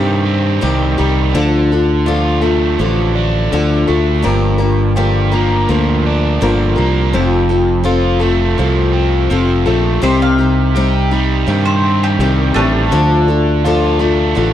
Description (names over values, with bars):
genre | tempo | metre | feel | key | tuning
rock | 83 BPM | 4/4 | straight | G minor | A4 = 443 Hz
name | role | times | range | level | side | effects
picked steel-string acoustic guitar | accompaniment | 0.0-14.5 s | G2 to Bb4 | -16 LUFS | left 4 dB | none
overdriven electric guitar | riff | 0.0-14.5 s | F2 to G4 | -18 LUFS | right 2 dB | none
fingered electric bass | bass | 0.0-14.5 s | F1 to G2 | -15 LUFS | right 1 dB | none
bowl-back mandolin | second line | 10.0-14.5 s | A3 to F5 | -20 LUFS | left 1 dB | none
room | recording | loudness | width
light reverb | dry, close 1970s-style studio recording | -11 LUFS | side -11 dB against mid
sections
0.0-14.5 A section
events
none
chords
0.0 Cm; 1.3 Dm; 4.2 Gm7; 7.1 F; 10.0 Cm; 12.9 Dm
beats
0.62 | 1.35 2.07 2.79 3.52 | 4.24 4.97 5.69 6.41 | 7.14 7.86 8.59 9.31 | 10.03 10.76 11.48 12.20 | 12.93 13.65 14.37